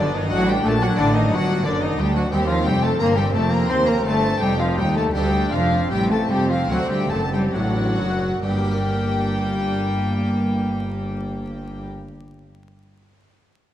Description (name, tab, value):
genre	classical, baroque-style concerto movement with solo episodes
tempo	66-91 BPM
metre	4/4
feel	straight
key	G minor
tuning	A4 = 438 Hz
part	warm cello	melody	0.0-11.9 s	D3 to C4	-24 LUFS	left 1 dB	none
part	warm chamber violin section	melody	0.0-11.9 s	D5 to C6	-28 LUFS	left 3 dB	none
part	warm chamber violin section	second line	0.0-11.9 s	D4 to C5	-26 LUFS	left 2 dB	none
part	dark chamber viola section	accompaniment	0.0-11.9 s	Bb3 to Eb4	-29 LUFS	right 1 dB	none
part	harpsichord	accompaniment	0.0-12.1 s	D2 to Bb4	-32 LUFS	right 1 dB	none
part	warm chamber cello section	bass	0.0-11.9 s	D2 to Bb2	-27 LUFS	right 2 dB	none
part	warm chamber double bass section	bass	0.0-11.9 s	F1 to Eb2	-26 LUFS	right 1 dB	none
room	moderate concert hall reverb, RT60 2.3 s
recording	vinyl crackle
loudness	-18 LUFS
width	side -11 dB against mid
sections	0.0-8.4 A section; 8.4-12.0 B section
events	slowing down 1.0-8.4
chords	0.0 D; 2.3 F9; 5.2 D5; 6.7 D7; 8.4 Gm